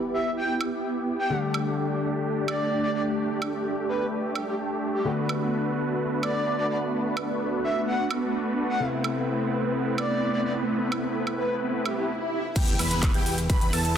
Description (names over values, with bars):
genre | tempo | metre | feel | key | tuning
EDM, festival progressive house | 128 BPM | 4/4 | straight | E minor | A4 = 440 Hz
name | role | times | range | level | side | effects
dark grand piano | accompaniment | 0.0-12.6 s | C3 to B4 | -32 LUFS | left 4 dB | sidechain pumping, tape echo
supersaw chords | riff | 0.0-14.0 s | A3 to B4 | -27 LUFS | right 1 dB | phaser, sidechain pumping, low-pass filter, tape echo
breathy flute-like synth lead | melody | 0.1-12.0 s | G4 to G5 | -31 LUFS | equal | analog chorus, tape echo
big-room dance drum kit | drums | 0.6-13.9 s | crash cymbal, handclaps, hi-hat, ride cymbal, shaker, woodblock | -32 LUFS | right 3 dB | overdrive, studio reverb
swell and impact | sound effects | 11.8-14.0 s | none | -33 LUFS | equal | none
wide unison lead | arpeggios | 12.6-14.0 s | G5 to B5 | -31 LUFS | right 1 dB | ensemble chorus, sidechain pumping, tape echo
fat analog bass | bass | 12.6-14.0 s | E2 | -28 LUFS | equal | sidechain pumping
electronic kick drum | drums | 12.6-13.6 s | none | -24 LUFS | equal | overdrive, studio reverb
room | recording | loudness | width
moderate lush hall reverb, RT60 2.1 s | dense, heavily limited modern master | -24 LUFS | side -8 dB against mid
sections
0.0-12.6 A section; 12.6-14.0 B section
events
swell 11.8-12.6; stop 12.1-12.6; drop 12.6-14.0; impact 12.6-14.0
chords
0.0 Em; 1.3 Dsus4; 5.1 Bm7; 8.8 Amadd9; 12.6 Em